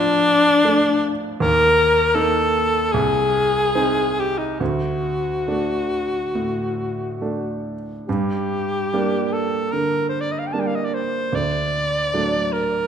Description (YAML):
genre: classical, romantic duo for alto saxophone and grand piano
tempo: 67-82 BPM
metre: 4/4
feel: rubato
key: unclear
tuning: A4 = 441 Hz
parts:
  - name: bright alto saxophone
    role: melody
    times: 0.0-12.9 s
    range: D4 to A5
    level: -19 LUFS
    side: left 2 dB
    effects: none
  - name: clear baby grand piano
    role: accompaniment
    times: 0.0-12.9 s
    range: C2 to Eb4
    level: -23 LUFS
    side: right 3 dB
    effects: none
room: moderate scoring stage reverb, RT60 1.6 s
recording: recorded in a church or concert hall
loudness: -18 LUFS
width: side -8 dB against mid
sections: 0.0-12.9 A section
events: none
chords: 0.0 Dm/F; 1.4 Eb5; 2.9 Ab/C; 4.6 D; 8.1 Gm; 11.3 D